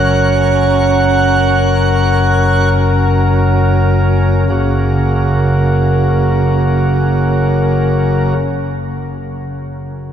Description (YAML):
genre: classical, chorale-style piece for pipe organ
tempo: free time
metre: none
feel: none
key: F# major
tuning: A4 = 440 Hz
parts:
  - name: pipe organ, cornet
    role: solo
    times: 0.0-8.3 s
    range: F#1 to F#6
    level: -11 LUFS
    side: equal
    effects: none
room: wet cathedral reverb, RT60 7.2 s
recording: heard from further back in the room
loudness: -11 LUFS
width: side -9 dB against mid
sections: 0.0-4.5 A section; 4.5-10.1 B section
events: slowing down 0.0-4.5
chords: 0.0 F#